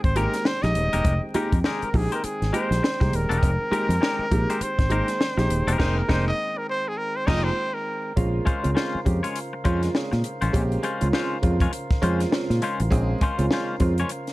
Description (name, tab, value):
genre	funk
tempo	101 BPM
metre	4/4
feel	swing 60% on 16ths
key	unclear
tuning	A4 = 440 Hz
part	breathy trumpet	melody	0.0-8.2 s	Ab4 to Eb5	-27 LUFS	equal	none
part	percussive tonewheel organ	sustained chords	0.0-14.3 s	Db3 to G5	-35 LUFS	equal	stopped rotary speaker
part	fingered electric bass	bass	0.0-14.0 s	Eb1 to Bb2	-23 LUFS	equal	none
part	compact cocktail drum kit	drums	0.0-14.3 s	crash cymbal, hi-hat, kick drum, snare drum	-25 LUFS	equal	none
part	twangy electric guitar	accompaniment	0.2-14.2 s	Ab3 to Db5	-29 LUFS	left 3 dB	none
part	warm upright piano	stabs	0.2-14.2 s	Ab3 to Bb4	-29 LUFS	right 2 dB	none
part	clear baritone saxophone	second line	5.8-7.4 s	Eb4	-36 LUFS	right 2 dB	none
room	little or no reverb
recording	vinyl crackle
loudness	-21 LUFS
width	side -18 dB against mid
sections	0.0-8.2 A section; 8.2-14.3 B section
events	trumpet solo 0.0-8.2; band accent 5.8-8.2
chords	0.0 Fm11; 8.2 Bbm9